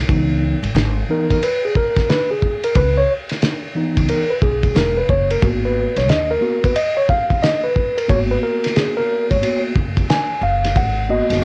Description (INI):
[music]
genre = hip hop, jazz-hop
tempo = 90 BPM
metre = 4/4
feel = swing 63% on 16ths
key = C# dorian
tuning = A4 = 440 Hz
[part]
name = mellow tine electric piano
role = accompaniment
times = 0.1-11.4 s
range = E3 to G#5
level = -20 LUFS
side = equal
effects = cassette tape
[part]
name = upright bass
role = bass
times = 0.1-11.4 s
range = E1 to D#2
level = -23 LUFS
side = equal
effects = none
[part]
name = cloth-damped thuddy drum kit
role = drums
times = 0.1-11.4 s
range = hi-hat, kick drum, ride cymbal, snare drum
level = -22 LUFS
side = equal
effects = cassette tape
[sound]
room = light reverb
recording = home recording on cassette, lossy compression artefacts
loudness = -18 LUFS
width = mono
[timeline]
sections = 0.0-11.4 A section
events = tine electric piano solo 0.0-11.4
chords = 0.0 C#m9; 5.4 G#m9